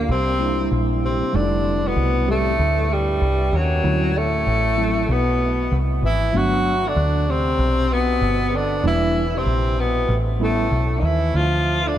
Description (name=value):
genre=hip hop, jazz-hop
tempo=96 BPM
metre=4/4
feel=swing 64% on 16ths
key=unclear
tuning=A4 = 441 Hz
part: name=breathy tenor saxophone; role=melody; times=0.0-12.0 s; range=F#3 to F#4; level=-22 LUFS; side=equal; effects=tape echo
part: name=warm trombone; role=second line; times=0.0-12.0 s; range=F#2 to F#3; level=-27 LUFS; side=left 2 dB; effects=tape echo
part: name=mellow tine electric piano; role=accompaniment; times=0.0-10.7 s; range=F#3 to G4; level=-27 LUFS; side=right 1 dB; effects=fast stereo tremolo
part: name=deep dub picked electric bass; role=bass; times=0.0-11.9 s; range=E1 to D#2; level=-21 LUFS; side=equal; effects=none
room=moderate cathedral reverb, RT60 4.6 s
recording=dreamy mix soaked in reverb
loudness=-17 LUFS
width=side -11 dB against mid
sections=0.0-12.0 A section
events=none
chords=0.1 C7; 1.3 Fmaj9; 3.8 D7; 6.3 Gmaj7; 8.8 Em7b5; 10.1 A7; 11.3 Dm